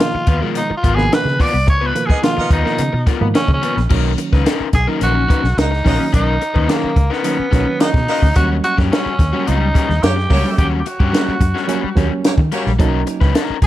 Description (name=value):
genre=funk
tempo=108 BPM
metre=4/4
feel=straight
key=unclear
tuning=A4 = 440 Hz
part: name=raspy tenor saxophone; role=melody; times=0.0-13.7 s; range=A#3 to D5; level=-20 LUFS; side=equal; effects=plate reverb
part: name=crunchy overdriven guitar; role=accompaniment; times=0.0-13.7 s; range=G3 to B4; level=-23 LUFS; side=left 8 dB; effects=plate reverb
part: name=reed electric piano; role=stabs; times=0.0-13.3 s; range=B2 to D#4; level=-22 LUFS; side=right 4 dB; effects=none
part: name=compact cocktail drum kit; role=drums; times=0.0-13.7 s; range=crash cymbal, hi-hat, kick drum, snare drum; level=-16 LUFS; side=equal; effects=none
part: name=vintage muted fingered electric bass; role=bass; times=0.1-13.7 s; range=G#1 to D#3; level=-18 LUFS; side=equal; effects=none
part: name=clear horn section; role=second line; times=2.1-12.7 s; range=A#3 to D#5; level=-26 LUFS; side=right 2 dB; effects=plate reverb, tape echo
room=light reverb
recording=none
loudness=-13 LUFS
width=side -14 dB against mid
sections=0.0-3.9 A section; 3.9-13.7 B section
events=tenor saxophone solo 0.0-3.9; band accent 1.7-3.9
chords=0.0 C#13; 3.9 Bmaj9; 8.4 D#7#9; 12.8 Bmaj9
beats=0.01 0.57 1.12 | 1.68 2.24 2.79 3.35 | 3.91 4.47 5.02 5.58 | 6.13 6.69 7.25 7.80 | 8.36 8.91 9.47 10.03 | 10.58 11.14 11.69 12.25 | 12.80 13.36